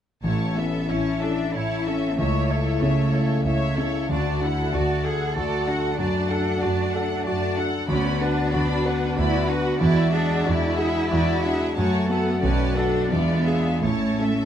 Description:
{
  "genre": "classical, romantic movement for piano and orchestra",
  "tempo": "94 BPM",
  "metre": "3/4",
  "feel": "rubato",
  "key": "A major",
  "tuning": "A4 = 440 Hz",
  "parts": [
    { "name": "clear concert grand piano", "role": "melody", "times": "0.2-14.5 s", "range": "A1 to B4", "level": "-24 LUFS", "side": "left 1 dB", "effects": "none" },
    { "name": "rich studio violin section", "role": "melody", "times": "0.2-14.5 s", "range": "C#5 to B5", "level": "-34 LUFS", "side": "left 1 dB", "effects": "none" },
    { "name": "rich studio violin section", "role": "second line", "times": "0.2-14.5 s", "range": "A4 to F#5", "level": "-31 LUFS", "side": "left 2 dB", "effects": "none" },
    { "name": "rich studio viola section", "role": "accompaniment", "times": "0.2-14.5 s", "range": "E4 to C#5", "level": "-32 LUFS", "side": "right 2 dB", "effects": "none" },
    { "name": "mellow French horn section", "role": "sustained chords", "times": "0.2-14.5 s", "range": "G#3 to F#4", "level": "-29 LUFS", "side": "left 4 dB", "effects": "none" },
    { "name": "rich studio cello section", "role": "bass", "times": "0.2-14.5 s", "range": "A3 to A4", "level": "-29 LUFS", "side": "right 2 dB", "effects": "none" },
    { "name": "warm studio double bass section", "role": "bass", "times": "0.2-14.5 s", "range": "A1 to F#2", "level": "-29 LUFS", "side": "right 3 dB", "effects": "none" }
  ],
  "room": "light reverb",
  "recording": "close, detailed microphones",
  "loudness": "-20 LUFS",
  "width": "side -10 dB against mid",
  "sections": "0.2-14.5 A section",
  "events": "none",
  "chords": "0.2 A; 2.2 A/C#; 4.1 D; 6.0 D/F#; 7.9 Bm/D; 9.8 E9; 11.8 F#m; 12.4 Bm7; 13.1 E7b9; 13.8 A"
}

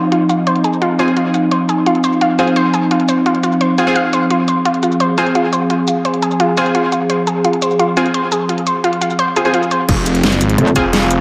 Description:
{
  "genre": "dark technical drum and bass",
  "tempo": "172 BPM",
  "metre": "4/4",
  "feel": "straight",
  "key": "F minor",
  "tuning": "A4 = 440 Hz",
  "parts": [
    { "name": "sweeping resonant pad", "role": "sustained chords", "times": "0.0-11.2 s", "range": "F3 to Ab4", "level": "-19 LUFS", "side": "equal", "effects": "subtle chorus, sidechain pumping" },
    { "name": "analog pluck", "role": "arpeggios", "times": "0.0-9.9 s", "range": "F4 to F5", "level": "-20 LUFS", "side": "equal", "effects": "chorus, sidechain pumping, diffuse ambient delay" },
    { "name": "dubstep drum kit", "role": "drums", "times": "0.1-11.2 s", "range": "crash cymbal, hi-hat, rim click, shaker, snare drum", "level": "-23 LUFS", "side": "equal", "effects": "low-pass filter on hats, low-pass filter on perc, low-pass filter on cymbals, low-pass filter on snare, low-pass filter on room" },
    { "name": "orchestra-hit-like synth stab", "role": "stabs", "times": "1.0-10.8 s", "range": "C4 to Ab4", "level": "-22 LUFS", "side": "equal", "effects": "built-in reverb, diffuse ambient delay" },
    { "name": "snarling distorted saw bass", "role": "bass", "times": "9.9-11.2 s", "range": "F1 to Ab1", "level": "-18 LUFS", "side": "equal", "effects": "distortion, overdrive, sidechain pumping" },
    { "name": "electronic kick drum", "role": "drums", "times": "9.9-10.8 s", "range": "none", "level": "-21 LUFS", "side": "equal", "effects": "none" },
    { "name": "metallic wobble bass", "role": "bass", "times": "10.6-10.7 s", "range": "F1", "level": "-14 LUFS", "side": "equal", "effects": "chorus" }
  ],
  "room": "wet plate reverb, RT60 1.3 s",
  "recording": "dreamy mix soaked in reverb",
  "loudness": "-15 LUFS",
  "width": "mono",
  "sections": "0.0-9.9 A section; 9.9-11.2 B section",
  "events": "drop 9.9-11.2",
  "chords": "0.0 Fm"
}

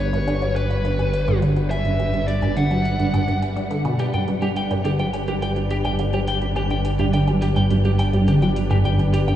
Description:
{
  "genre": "ambient, sequencer-driven space music",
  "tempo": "105 BPM",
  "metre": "4/4",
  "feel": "straight",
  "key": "G major",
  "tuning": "A4 = 440 Hz",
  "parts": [
    { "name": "bluesy overdriven lead guitar", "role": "melody", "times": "0.0-3.4 s", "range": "B4 to F#5", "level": "-28 LUFS", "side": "left 1 dB", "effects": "distortion, shimmer reverb, analog delay" },
    { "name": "string machine, full ensemble", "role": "sustained chords", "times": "0.0-9.4 s", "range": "G3 to B4", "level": "-27 LUFS", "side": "equal", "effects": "ensemble chorus, shimmer reverb" },
    { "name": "fat analog bass", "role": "bass", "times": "0.0-9.4 s", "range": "G1", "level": "-24 LUFS", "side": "equal", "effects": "none" },
    { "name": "resonant blip pluck", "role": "riff", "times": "0.1-9.4 s", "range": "G2 to G3", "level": "-22 LUFS", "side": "right 1 dB", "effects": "phaser, analog delay" },
    { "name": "electronic hi-hat and woodblock", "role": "percussion", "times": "0.1-9.4 s", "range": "none", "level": "-38 LUFS", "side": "right 1 dB", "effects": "analog delay" },
    { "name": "electric guitar at the edge of break-up", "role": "arpeggios", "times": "4.0-9.4 s", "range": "G4 to G5", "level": "-27 LUFS", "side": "left 1 dB", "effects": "auto-pan, shimmer reverb, analog delay" }
  ],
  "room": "moderate huge ambient reverb, RT60 8.1 s",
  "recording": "played on a big sound system in a bare room, cassette tape, large studio reverb",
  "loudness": "-18 LUFS",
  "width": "side -11 dB against mid",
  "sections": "0.0-9.4 A section",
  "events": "none",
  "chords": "0.0 Gmaj7"
}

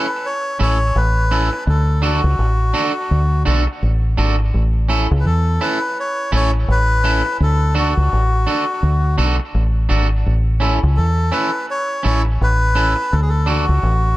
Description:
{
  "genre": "roots reggae",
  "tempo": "84 BPM",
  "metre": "4/4",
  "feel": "swing 59% on 16ths",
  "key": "A major",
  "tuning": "A4 = 442 Hz",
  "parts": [
    { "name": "melodica", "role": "melody", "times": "0.0-14.2 s", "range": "F#4 to C#5", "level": "-21 LUFS", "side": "left 1 dB", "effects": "tape echo" },
    { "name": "electric guitar at the edge of break-up", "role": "accompaniment", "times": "0.0-13.6 s", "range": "C#4 to A4", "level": "-23 LUFS", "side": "right 2 dB", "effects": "tape echo" },
    { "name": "deep dub fingered electric bass", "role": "bass", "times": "0.6-14.2 s", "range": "G#1 to E2", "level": "-16 LUFS", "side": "equal", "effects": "none" }
  ],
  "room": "light reverb",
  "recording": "none",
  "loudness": "-15 LUFS",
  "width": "side -17 dB against mid",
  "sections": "0.0-14.2 A section",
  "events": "none",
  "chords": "0.0 A; 1.7 D; 4.5 A; 7.4 D; 10.3 A; 13.1 D"
}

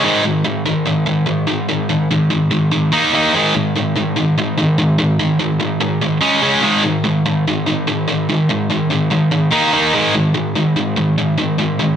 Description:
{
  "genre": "rock",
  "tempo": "145 BPM",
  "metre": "4/4",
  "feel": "straight",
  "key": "unclear",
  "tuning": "A4 = 439 Hz",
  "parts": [
    { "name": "sludgy distorted guitar", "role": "solo", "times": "0.0-12.0 s", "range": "Ab2 to Eb4", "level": "-14 LUFS", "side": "equal", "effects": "overdrive" }
  ],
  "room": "wet large studio reverb, RT60 0.9 s, digital ambience",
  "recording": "dense, heavily limited modern master",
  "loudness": "-14 LUFS",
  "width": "side -9 dB against mid",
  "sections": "0.0-12.0 A section",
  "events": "none",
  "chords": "0.0 Ab5; 2.9 Eb5; 3.3 Ab5; 6.2 Db5; 6.6 Ab5; 9.5 Eb5; 9.9 Ab5"
}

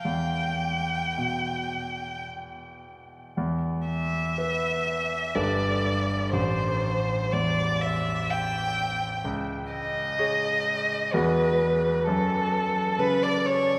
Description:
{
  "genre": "classical, impressionist duo for violin and grand piano",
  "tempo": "53-66 BPM",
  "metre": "3/4",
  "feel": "rubato",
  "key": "E dorian",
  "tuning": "A4 = 440 Hz",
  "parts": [
    { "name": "warm violin", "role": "melody", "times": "0.0-13.8 s", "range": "A4 to G5", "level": "-29 LUFS", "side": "equal", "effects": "none" },
    { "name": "bright concert grand piano", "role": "accompaniment", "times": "0.0-13.8 s", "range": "G1 to C#5", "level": "-30 LUFS", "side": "equal", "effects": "none" }
  ],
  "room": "wet cathedral reverb, RT60 5.5 s",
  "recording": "recorded in a church or concert hall",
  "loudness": "-26 LUFS",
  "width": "mono",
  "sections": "0.0-3.4 A section; 3.4-13.8 A section",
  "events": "none",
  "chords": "0.1 E5; 5.4 Gadd9; 6.3 Am7; 9.3 C#sus2; 11.2 Eadd9; 12.1 F#m"
}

